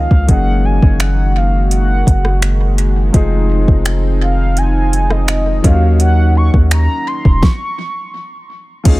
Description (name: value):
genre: contemporary R&B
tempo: 84 BPM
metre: 4/4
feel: straight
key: unclear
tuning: A4 = 442 Hz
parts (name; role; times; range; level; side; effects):
- mellow horn-like synth lead; melody; 0.0-8.5 s; Eb5 to Db6; -21 LUFS; equal; chorus, tape echo
- warm concert grand piano; accompaniment; 0.0-9.0 s; F3 to Ab4; -22 LUFS; left 4 dB; none
- chorused pulse-width pad; sustained chords; 0.0-9.0 s; Eb3 to Gb4; -23 LUFS; right 1 dB; none
- long sustained 808-style bass; bass; 0.0-9.0 s; Eb1 to Eb2; -13 LUFS; equal; none
- smooth R&B drum kit; drums; 0.1-9.0 s; crash cymbal, finger snaps, hi-hat, kick drum, rim click, snare drum; -12 LUFS; equal; overdrive
room: little or no reverb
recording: echo-heavy mix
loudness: -11 LUFS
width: side -19 dB against mid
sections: 0.0-8.9 A section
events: stop 7.4-8.9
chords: 0.3 Gb69; 3.1 Fm7; 5.6 Ebm7